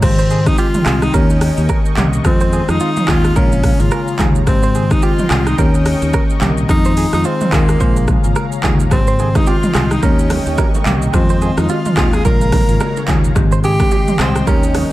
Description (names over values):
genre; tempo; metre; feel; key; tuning
afrobeats; 108 BPM; 4/4; swing 58% on 16ths; Ab major; A4 = 440 Hz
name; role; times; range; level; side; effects
mellow tenor saxophone; melody; 0.0-14.9 s; Bb3 to Bb4; -20 LUFS; equal; analog delay
marimba with medium mallets; accompaniment; 0.0-14.9 s; Db3 to G4; -19 LUFS; left 3 dB; none
warm analog pad; sustained chords; 0.0-14.9 s; Ab3 to Db6; -28 LUFS; equal; chorus, phaser
fingered electric bass; bass; 0.0-14.8 s; Ab1 to F2; -17 LUFS; equal; none
deep house drum kit; drums; 0.0-14.9 s; crash cymbal, handclaps, hi-hat, kick drum, rim click, shaker, toms; -16 LUFS; equal; overdrive
direct-recorded clean electric guitar; riff; 0.2-14.6 s; F4 to C5; -26 LUFS; right 6 dB; analog delay
congas and bongos; percussion; 8.9-14.9 s; none; -27 LUFS; right 7 dB; none
room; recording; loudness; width
little or no reverb; echo-heavy mix; -12 LUFS; side -16 dB against mid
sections
0.0-14.9 A section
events
none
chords
0.0 Abmaj7; 1.1 Eb7; 2.2 Fm7; 3.4 Bbm7; 4.5 Abmaj7; 5.6 Eb7; 6.7 Fm7; 7.8 Bbm7; 8.9 Abmaj7; 10.0 Eb7; 11.1 Fm7; 12.2 Bbm7; 13.4 Abmaj7